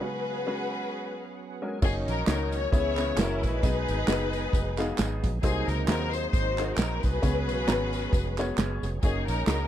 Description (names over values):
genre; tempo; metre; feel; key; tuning
uptempo gospel; 133 BPM; 4/4; swing 56% on 8ths; F# major; A4 = 442 Hz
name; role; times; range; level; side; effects
warm symphonic string section; melody; 0.0-9.7 s; C#4 to C#5; -31 LUFS; left 2 dB; none
clear upright piano; accompaniment; 0.0-9.7 s; B2 to A#5; -33 LUFS; left 2 dB; none
bright tonewheel organ; sustained chords; 0.0-9.7 s; D#3 to G#5; -38 LUFS; right 5 dB; slow rotary speaker, chorus vibrato
fingered electric bass; bass; 1.8-9.7 s; E#1 to D#2; -31 LUFS; equal; none
natural country drum kit; drums; 1.8-9.6 s; crash cymbal, hi-hat, kick drum, snare drum; -27 LUFS; right 1 dB; none
tambourine and handclaps; percussion; 1.8-9.6 s; none; -38 LUFS; right 5 dB; none
room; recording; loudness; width
little or no reverb; dry, close 1970s-style studio recording; -25 LUFS; side -11 dB against mid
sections
0.0-1.8 A section; 1.8-9.7 B section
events
break 0.0-1.8; tonewheel organ fill 0.9-1.8, 8.1-9.0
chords
0.0 C#7sus4; 1.8 F#6; 2.7 C#m7; 3.2 F#9; 3.6 B6; 5.4 G#9/B#; 7.2 C#7sus4; 9.0 F#69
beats
| 0.02 0.47 0.93 1.38 | 1.83 2.28 2.73 3.18 | 3.63 4.08 4.54 4.99 | 5.43 5.88 6.33 6.79 | 7.24 7.68 8.13 8.58 | 9.03 9.48